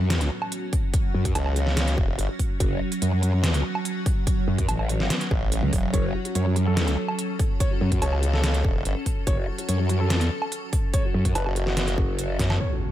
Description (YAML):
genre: heavy wobble dubstep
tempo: 144 BPM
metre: 4/4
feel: half-time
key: F# minor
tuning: A4 = 440 Hz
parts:
  - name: evolving wavetable pad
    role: sustained chords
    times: 0.0-12.9 s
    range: F#2 to A4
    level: -32 LUFS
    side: right 1 dB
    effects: ensemble chorus, built-in reverb, phaser, sidechain pumping
  - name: growl bass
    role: bass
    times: 0.0-12.4 s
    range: F#1 to F#2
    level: -23 LUFS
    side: equal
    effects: chorus, overdrive
  - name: dubstep drum kit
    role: drums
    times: 0.1-12.7 s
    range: crash cymbal, hi-hat, snare drum, woodblock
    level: -29 LUFS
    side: right 1 dB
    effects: low-pass filter on hats, low-pass filter on perc, low-pass filter on snare, low-pass filter on cymbals
  - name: electronic kick drum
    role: drums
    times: 0.7-12.5 s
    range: none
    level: -24 LUFS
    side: equal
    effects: none
  - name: formant-sweep wobble bass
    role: bass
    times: 1.4-2.3, 5.3-12.6 s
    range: E1 to F#2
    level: -24 LUFS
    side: equal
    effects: chorus, overdrive
  - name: dark baby grand piano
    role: melody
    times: 5.9-12.9 s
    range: F#4 to C#5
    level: -32 LUFS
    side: equal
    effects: vintage 12-bit sampler grit, tape echo
  - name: impact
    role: sound effects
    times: 12.6-12.9 s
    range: none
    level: -26 LUFS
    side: equal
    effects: none
room: little or no reverb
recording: none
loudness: -22 LUFS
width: side -13 dB against mid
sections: 0.0-12.6 A section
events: drop 0.0-12.6; drum fill 12.4; impact 12.6-12.9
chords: 0.0 F#5